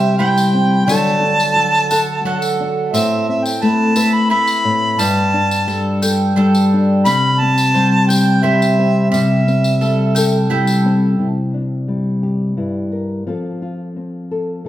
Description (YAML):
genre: acoustic folk duo or small band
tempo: 87 BPM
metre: 3/4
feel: straight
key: C major, C mixolydian from 11.2 s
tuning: A4 = 441 Hz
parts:
  - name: mellow harmonica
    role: melody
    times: 0.0-10.5 s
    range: E5 to B5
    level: -17 LUFS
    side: right 1 dB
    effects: none
  - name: nylon-string guitar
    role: accompaniment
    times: 0.0-14.7 s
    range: G2 to B4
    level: -15 LUFS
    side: left 1 dB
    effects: none
  - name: bowl-back mandolin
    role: arpeggios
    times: 0.0-11.3 s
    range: G3 to G5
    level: -22 LUFS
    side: right 5 dB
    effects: none
  - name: tambourine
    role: percussion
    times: 0.4-10.8 s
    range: none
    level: -27 LUFS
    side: left 2 dB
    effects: none
room: wet recital hall reverb, RT60 1.5 s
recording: recorded in a church or concert hall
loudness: -13 LUFS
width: side -13 dB against mid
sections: 0.0-11.2 A section; 11.2-14.7 B section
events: none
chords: 0.0 C; 0.9 D; 2.9 Amadd9; 5.0 Gsus2; 7.1 C; 9.1 C6; 11.2 Cadd9; 13.3 F